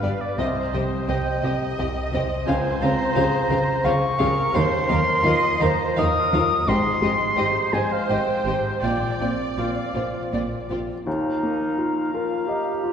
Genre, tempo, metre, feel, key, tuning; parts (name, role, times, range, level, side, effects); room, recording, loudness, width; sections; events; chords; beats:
cinematic, emotional film score for orchestra; 80-88 BPM; 3/4; rubato; Eb major; A4 = 440 Hz
rich symphonic violin section; melody; 0.0-10.8 s; D5 to F5; -34 LUFS; left 3 dB
warm oboe; second line; 0.0-12.9 s; D5 to Eb6; -25 LUFS; equal
warm symphonic violin section; second line; 0.0-10.8 s; Bb3 to Bb4; -31 LUFS; left 1 dB
felt-muted upright piano; accompaniment; 0.0-12.9 s; C2 to G5; -27 LUFS; left 1 dB
rich symphonic viola section; accompaniment; 0.0-10.7 s; Ab3 to Eb5; -28 LUFS; right 1 dB
rich symphonic cello section; bass; 0.0-10.8 s; G2 to Eb3; -28 LUFS; right 2 dB
rich symphonic double bass section; bass; 0.0-10.8 s; G1 to Eb2; -29 LUFS; right 2 dB
concert flute; second line; 11.1-12.9 s; Bb5; -31 LUFS; left 3 dB
warm clarinet; second line; 11.1-12.9 s; Eb4 to G4; -25 LUFS; equal
wet concert hall reverb, RT60 2.5 s; recorded in a church or concert hall; -20 LUFS; side -8 dB against mid
0.0-11.1 A section; 11.1-12.9 A section
0.4 Cm; 2.5 Dbmaj7; 4.5 Ebsus2; 6.7 Abmaj7; 8.8 Bbadd9; 11.1 Ebsus2
| 0.39 1.09 1.79 | 2.48 3.16 3.84 | 4.54 5.24 5.97 | 6.67 7.37 8.09 | 8.83 9.58 10.32 | 11.06 11.77 12.48